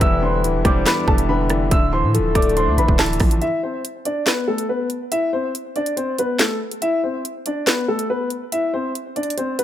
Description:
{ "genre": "hip hop, drill", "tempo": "141 BPM", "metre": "4/4", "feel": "half-time", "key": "unclear", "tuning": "A4 = 440 Hz", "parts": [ { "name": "dark grand piano", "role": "melody", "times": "0.0-9.6 s", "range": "A3 to E6", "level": "-21 LUFS", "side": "left 1 dB", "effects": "digital delay" }, { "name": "soft octave-layered synth lead", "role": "second line", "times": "0.0-3.0 s", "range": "A4 to D5", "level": "-25 LUFS", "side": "left 4 dB", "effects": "chorus, digital delay" }, { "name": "warm concert grand piano", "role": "accompaniment", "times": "0.0-3.4 s", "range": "E2 to D4", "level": "-23 LUFS", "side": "equal", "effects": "none" }, { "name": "hand-pumped harmonium", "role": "sustained chords", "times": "0.0-3.4 s", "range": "D3 to E4", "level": "-27 LUFS", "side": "left 4 dB", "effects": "none" }, { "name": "long sustained 808-style bass", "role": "bass", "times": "0.0-3.4 s", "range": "D1 to A2", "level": "-22 LUFS", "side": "equal", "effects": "none" }, { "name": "drill drum kit", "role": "drums", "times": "0.0-9.6 s", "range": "handclaps, hi-hat, kick drum, rim click, snare drum", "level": "-19 LUFS", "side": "equal", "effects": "none" } ], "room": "light reverb, small room ambience", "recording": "none", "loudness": "-17 LUFS", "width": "side -11 dB against mid", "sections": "0.0-3.4 A section; 3.4-9.6 B section", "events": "break 3.4-9.6", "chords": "0.0 Em7; 1.7 Dmadd9; 3.4 Amadd9 (rootless)", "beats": "| 0.01 0.44 0.86 1.29 | 1.71 2.14 2.56 2.99 | 3.42 3.84 4.27 4.69 | 5.12 5.54 5.97 6.39 | 6.82 7.25 7.67 8.10 | 8.52 8.95 9.37" }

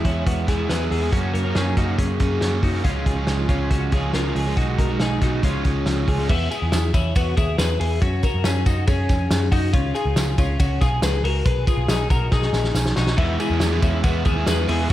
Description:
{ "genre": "jangly indie pop", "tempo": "139 BPM", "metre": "4/4", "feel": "straight", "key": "unclear", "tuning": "A4 = 440 Hz", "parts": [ { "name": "overdriven electric guitar", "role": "accompaniment", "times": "0.0-6.3, 13.2-14.9 s", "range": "F#2 to E4", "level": "-26 LUFS", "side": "right 4 dB", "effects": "none" }, { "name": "twelve-string electric guitar", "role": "arpeggios", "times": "0.0-14.9 s", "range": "B3 to B4", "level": "-25 LUFS", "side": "left 3 dB", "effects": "analog chorus, tape echo" }, { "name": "vintage muted picked electric bass", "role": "bass", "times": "0.0-14.9 s", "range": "A#1 to F#2", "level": "-23 LUFS", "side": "equal", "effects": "none" }, { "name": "loose indie drum kit", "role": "drums", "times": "0.0-14.9 s", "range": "crash cymbal, hi-hat, kick drum, ride cymbal, snare drum", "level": "-22 LUFS", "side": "equal", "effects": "none" }, { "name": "tambourine", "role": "percussion", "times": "6.5-14.9 s", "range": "none", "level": "-39 LUFS", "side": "right 7 dB", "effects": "none" } ], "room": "moderate lush hall reverb, RT60 1.7 s, studio reverb", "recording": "dreamy mix soaked in reverb", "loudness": "-18 LUFS", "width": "side -14 dB against mid", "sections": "0.0-6.3 A section; 6.3-14.9 B section", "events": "drum fill 12.3-13.2", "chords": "0.0 E; 1.1 F#; 2.8 C#; 4.6 B6; 5.4 C#; 6.3 E; 8.0 F#; 9.7 C#; 11.5 B6; 13.2 E", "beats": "0.26 0.69 | 1.12 1.55 1.99 2.42 | 2.85 3.28 3.71 4.14 | 4.57 5.00 5.43 5.87 | 6.30 6.73 7.16 7.59 | 8.02 8.45 8.88 9.31 | 9.74 10.17 10.60 11.03 | 11.46 11.89 12.32 12.75 | 13.18 13.61 14.04 14.47 | 14.90" }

